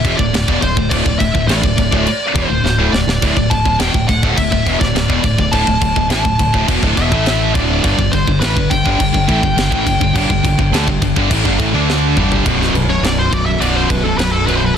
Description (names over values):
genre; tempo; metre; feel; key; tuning
heavy metal; 104 BPM; 4/4; straight; unclear; A4 = 435 Hz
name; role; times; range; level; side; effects
smooth overdriven lead guitar; melody; 0.0-14.8 s; A4 to A5; -19 LUFS; left 1 dB; none
cranked stack guitar; riff; 0.0-14.8 s; B1 to D4; -22 LUFS; equal; overdrive
high-gain distorted guitar; riff; 0.0-14.8 s; B1 to D4; -20 LUFS; left 10 dB; distortion
high-gain distorted guitar; riff; 0.0-14.8 s; B1 to D4; -20 LUFS; right 10 dB; distortion
growling fingered electric bass; bass; 0.0-14.7 s; B0 to D2; -19 LUFS; equal; overdrive
tight metal drum kit; drums; 0.0-14.6 s; crash cymbal, kick drum, snare drum, toms; -19 LUFS; equal; none
room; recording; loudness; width
studio reverb; dense, heavily limited modern master; -12 LUFS; side -8 dB against mid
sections
0.0-12.5 A section; 12.5-14.8 B section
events
drum fill 2.6-3.2, 11.9-12.5; lead electric guitar solo 12.5-14.8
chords
0.0 D5; 7.8 G5; 12.5 B5